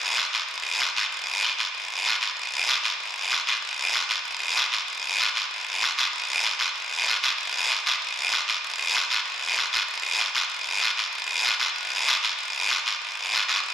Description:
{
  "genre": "latin",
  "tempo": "192 BPM",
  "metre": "4/4",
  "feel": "straight",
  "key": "none",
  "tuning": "none",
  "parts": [
    { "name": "guiro", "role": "percussion", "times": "0.2-13.7 s", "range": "none", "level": "-21 LUFS", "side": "equal", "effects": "none" }
  ],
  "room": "wet cathedral reverb, RT60 4.2 s",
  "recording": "recorded in a church or concert hall",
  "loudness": "-21 LUFS",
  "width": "side -10 dB against mid",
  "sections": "0.0-3.0 A section; 3.0-13.0 B section",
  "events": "none",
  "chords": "none"
}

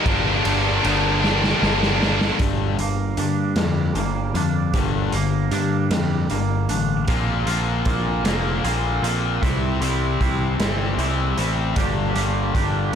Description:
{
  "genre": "quiet-loud alternative rock",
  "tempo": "51 BPM (dotted quarters)",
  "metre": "6/8",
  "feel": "straight",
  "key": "G minor",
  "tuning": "A4 = 440 Hz",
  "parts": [
    { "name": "clear symphonic string section", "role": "sustained chords", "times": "0.0-2.4 s", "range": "D4 to Bb5", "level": "-34 LUFS", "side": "equal", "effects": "none" },
    { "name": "distorted electric guitar", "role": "riff", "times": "0.0-12.9 s", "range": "G2 to D4", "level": "-24 LUFS", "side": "left 11 dB", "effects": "distortion" },
    { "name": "heavy high-gain guitar", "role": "riff", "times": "0.0-2.4 s", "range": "G2 to D4", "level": "-24 LUFS", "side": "equal", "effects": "distortion" },
    { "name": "high-gain distorted guitar", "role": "riff", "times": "0.0-2.4 s", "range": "G2 to D4", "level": "-24 LUFS", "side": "right 16 dB", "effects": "distortion" },
    { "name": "growling picked electric bass", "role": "bass", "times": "0.1-12.9 s", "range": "F1 to G2", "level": "-24 LUFS", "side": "right 1 dB", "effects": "overdrive" },
    { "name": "raw garage drum kit", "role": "drums", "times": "0.1-12.7 s", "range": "hi-hat, kick drum, ride cymbal, snare drum", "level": "-25 LUFS", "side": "right 1 dB", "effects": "none" },
    { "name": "twangy electric guitar", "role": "arpeggios", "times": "2.4-12.9 s", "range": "G2 to G4", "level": "-26 LUFS", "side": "right 12 dB", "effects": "lush chorus, digital delay" }
  ],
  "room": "little or no reverb",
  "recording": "none",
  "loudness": "-18 LUFS",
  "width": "side -8 dB against mid",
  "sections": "0.0-2.4 A section; 2.4-7.1 B section; 7.1-12.9 C section",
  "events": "drum fill 1.2-2.4",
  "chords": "0.1 Gm; 7.1 Bbadd9; 9.4 C; 11.8 Gm"
}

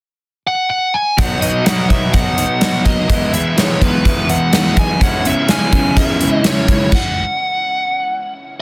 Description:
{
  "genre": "rock, shoegaze and dream pop",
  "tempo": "126 BPM",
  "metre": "4/4",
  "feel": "straight",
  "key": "B major",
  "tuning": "A4 = 440 Hz",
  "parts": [
    { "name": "biting lead guitar", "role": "melody", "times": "0.5-8.3 s", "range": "B4 to G#5", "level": "-21 LUFS", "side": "equal", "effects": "overdrive, slapback echo" },
    { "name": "picked twelve-string acoustic guitar", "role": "arpeggios", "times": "1.2-6.9 s", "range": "F#3 to G#4", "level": "-29 LUFS", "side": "equal", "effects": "none" },
    { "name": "biting overdriven guitar", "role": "riff", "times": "1.2-6.9 s", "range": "B2 to E4", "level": "-24 LUFS", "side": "equal", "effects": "reverse reverb" },
    { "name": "crunchy overdriven guitar", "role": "riff", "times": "1.2-6.9 s", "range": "B2 to E4", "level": "-23 LUFS", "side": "equal", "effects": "subtle chorus" },
    { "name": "gated 80s drum kit", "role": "drums", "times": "1.2-7.0 s", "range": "crash cymbal, hi-hat, kick drum, snare drum", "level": "-18 LUFS", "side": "equal", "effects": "none" }
  ],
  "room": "small room ambience",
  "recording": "dense, heavily limited modern master",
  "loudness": "-15 LUFS",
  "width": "mono",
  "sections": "0.0-1.2 A section; 1.2-8.6 B section",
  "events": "stop 6.9-8.6",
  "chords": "0.0 N.C.; 1.2 Bmaj7; 3.1 Emaj7; 5.0 C#m7; 6.9 N.C."
}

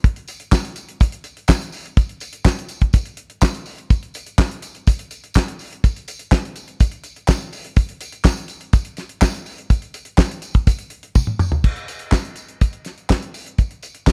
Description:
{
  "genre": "disco",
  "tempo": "124 BPM",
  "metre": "4/4",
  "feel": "straight",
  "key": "none",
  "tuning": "none",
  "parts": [
    { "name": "damped 70s drum kit", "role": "drums", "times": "0.0-14.1 s", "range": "crash cymbal, handclaps, hi-hat, kick drum, snare drum, toms", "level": "-18 LUFS", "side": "equal", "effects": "none" },
    { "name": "tambourine", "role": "percussion", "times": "0.3-14.1 s", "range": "none", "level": "-38 LUFS", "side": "equal", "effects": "none" }
  ],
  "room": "little or no reverb",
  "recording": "none",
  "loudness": "-20 LUFS",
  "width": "mono",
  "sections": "0.0-11.6 A section; 11.6-14.1 B section",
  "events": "drum fill 11.2-11.6",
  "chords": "none"
}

